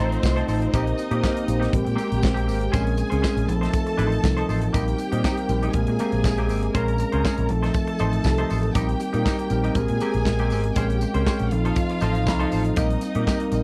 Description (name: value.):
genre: disco.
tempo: 120 BPM.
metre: 4/4.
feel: straight.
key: unclear.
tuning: A4 = 439 Hz.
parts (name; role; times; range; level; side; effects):
clear studio string section; second line; 0.0-13.6 s; C4 to Bb5; -34 LUFS; equal; none.
mellow tine electric piano; accompaniment; 0.0-13.6 s; F3 to C5; -28 LUFS; equal; none.
semi-hollow electric guitar; accompaniment; 0.0-13.6 s; Bb3 to C5; -34 LUFS; equal; lush chorus.
dark French horn section; sustained chords; 0.0-13.6 s; C3 to G4; -34 LUFS; equal; none.
picked electric bass with an envelope filter; bass; 0.0-13.6 s; Ab1 to Bb2; -27 LUFS; equal; tube saturation.
modern studio drum kit; drums; 0.1-13.6 s; handclaps, hi-hat, kick drum, snare drum; -28 LUFS; equal; none.
tambourine; percussion; 0.2-13.6 s; none; -45 LUFS; equal; none.
room: little or no reverb.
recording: dry, close 1970s-style studio recording.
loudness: -23 LUFS.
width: mono.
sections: 0.0-13.6 A section.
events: none.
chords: 0.0 F7; 0.7 Cm7/Bb; 1.7 Abmaj9/Bb; 2.7 Bbm9; 3.5 F7; 4.7 Cm7/Bb; 5.7 Abmaj9/Bb; 6.7 Bbm9; 7.5 F7; 8.8 Cm7/Bb; 9.8 Abmaj9/Bb; 10.8 Bbm9; 11.5 F7; 12.8 Cm7/Bb.